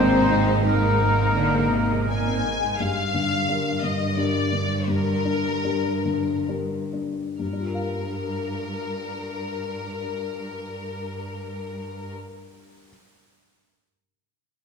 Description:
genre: cinematic, emotional film score for orchestra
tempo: 64-88 BPM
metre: 3/4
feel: rubato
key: G phrygian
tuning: A4 = 439 Hz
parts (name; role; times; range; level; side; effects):
- rich studio violin section; melody; 0.0-12.1 s; Eb4 to Ab5; -29 LUFS; left 4 dB; none
- clear clarinet; second line; 0.0-2.4 s; Bb3 to C4; -31 LUFS; left 4 dB; none
- clear oboe; second line; 0.0-2.4 s; Bb4 to C5; -29 LUFS; right 3 dB; none
- rich studio violin section; second line; 0.0-2.4 s; Bb4 to C5; -32 LUFS; right 1 dB; none
- silver concert flute; second line; 0.0-2.4 s; Eb4; -27 LUFS; left 6 dB; none
- dark grand piano; accompaniment; 0.0-12.9 s; G2 to F5; -27 LUFS; left 3 dB; none
- rich studio viola section; accompaniment; 0.0-2.8 s; Eb3 to C4; -32 LUFS; right 2 dB; none
- warm French horn section; sustained chords; 0.0-2.4 s; Bb3 to C4; -28 LUFS; left 3 dB; none
- concert harp; arpeggios; 0.0-2.8 s; Ab2 to Eb6; -33 LUFS; left 6 dB; none
- clear studio cello section; bass; 0.0-12.1 s; G2 to D3; -29 LUFS; right 4 dB; none
- rich studio double bass section; bass; 0.0-2.6 s; Ab1; -27 LUFS; right 3 dB; none
room: wet scoring stage reverb, RT60 1.9 s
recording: minimal, uncompressed stereo recording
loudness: -22 LUFS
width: side -6 dB against mid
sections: 0.0-2.8 A section; 2.8-7.4 B section; 7.4-12.9 C section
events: slowing down 1.7-7.4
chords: 0.0 Abadd9; 2.8 Gm7

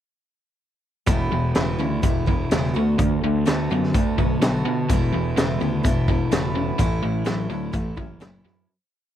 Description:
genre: classic rock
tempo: 126 BPM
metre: 4/4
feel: straight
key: unclear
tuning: A4 = 442 Hz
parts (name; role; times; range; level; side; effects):
- picked steel-string acoustic guitar; accompaniment; 1.1-8.7 s; E2 to F#4; -29 LUFS; right 1 dB; none
- raw garage guitar; riff; 1.1-8.7 s; E2 to B3; -24 LUFS; left 1 dB; overdrive
- fuzz picked electric bass; bass; 1.1-8.6 s; E1 to B2; -26 LUFS; equal; overdrive
- raw garage drum kit; drums; 1.1-8.5 s; hi-hat, kick drum, snare drum; -23 LUFS; equal; none
room: little or no reverb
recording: dry, close 1970s-style studio recording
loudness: -19 LUFS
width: side -10 dB against mid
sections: 1.1-8.7 verse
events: fade-out 6.8-8.7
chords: 1.1 Esus4; 2.8 D6; 4.9 Esus4; 6.8 A

